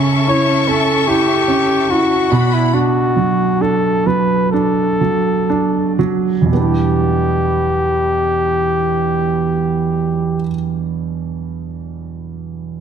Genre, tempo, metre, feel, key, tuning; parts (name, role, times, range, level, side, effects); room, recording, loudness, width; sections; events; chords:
pop; 57-76 BPM; 4/4; straight; E minor; A4 = 440 Hz
warm concert grand piano; accompaniment; 0.0-12.8 s; E2 to E4; -16 LUFS; right 4 dB
dark studio string section; sustained chords; 0.0-2.7 s; C#4 to C#6; -19 LUFS; left 4 dB
mellow flugelhorn; melody; 0.3-10.4 s; E4 to C#5; -18 LUFS; left 2 dB; ping-pong delay
moderate scoring stage reverb, RT60 1.6 s, small room ambience; -13 LUFS; side -8 dB against mid
0.0-6.5 A section; 6.5-10.7 B section
slowing down 0.0-6.5
0.0 A7/C#; 2.3 Bm7; 6.5 Em7